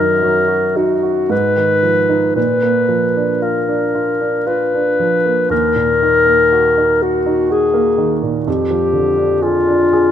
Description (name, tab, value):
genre	classical, romantic duo for clarinet and grand piano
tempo	54-64 BPM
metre	3/4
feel	rubato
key	Eb minor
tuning	A4 = 441 Hz
part	dark clarinet	melody	0.0-10.1 s	F4 to Cb5	-14 LUFS	left 3 dB	none
part	clear concert grand piano	accompaniment	0.0-10.1 s	Eb2 to Ab4	-18 LUFS	right 6 dB	none
room	light reverb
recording	close, detailed microphones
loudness	-12 LUFS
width	side -9 dB against mid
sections	0.0-10.1 A section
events	none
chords	0.0 Ebm/Gb; 1.3 Fm7b5/Ab; 2.4 Bb; 5.5 Ebm; 8.5 Ddim/F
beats	0.24 1.31 | 2.37 3.42 4.47 | 5.51 6.53 7.51 | 8.47 9.42